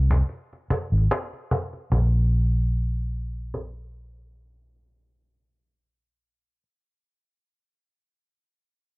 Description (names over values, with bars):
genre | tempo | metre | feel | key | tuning
contemporary R&B | 74 BPM | 4/4 | swing 54% on 16ths | unclear | A4 = 445 Hz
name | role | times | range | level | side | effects
vintage muted fingered electric bass | bass | 0.0-6.6 s | Ab1 to C2 | -21 LUFS | equal | tube saturation
cajon | drums | 0.1-3.7 s | none | -26 LUFS | equal | none
room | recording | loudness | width
studio reverb | dry, gritty hardware recording, low-pass filter | -22 LUFS | side -25 dB against mid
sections
0.0-1.9 A section; 1.9-5.2 B section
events
filter sweep 0.0-1.9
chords
none